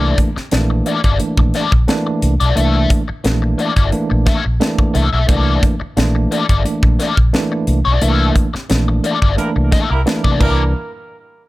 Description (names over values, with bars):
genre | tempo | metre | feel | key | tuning
funk | 88 BPM | 4/4 | straight | C mixolydian | A4 = 440 Hz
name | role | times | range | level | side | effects
crunchy overdriven guitar | accompaniment | 0.0-10.6 s | Bb3 to E5 | -20 LUFS | left 5 dB | wah
tine electric piano | stabs | 0.0-10.7 s | E3 to D4 | -20 LUFS | right 2 dB | fast stereo tremolo, plate reverb
fingered electric bass with an envelope filter | bass | 0.0-10.7 s | G1 to C3 | -16 LUFS | equal | none
crisp fusion drum kit | drums | 0.2-10.6 s | crash cymbal, hi-hat, kick drum, snare drum | -16 LUFS | equal | none
warm horn section | second line | 9.4-10.7 s | G3 to Bb4 | -25 LUFS | right 3 dB | analog delay, plate reverb
room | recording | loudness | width
light reverb | none | -13 LUFS | side -18 dB against mid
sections
0.0-10.7 A section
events
band accent 8.0-10.7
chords
0.0 C13; 10.7 N.C.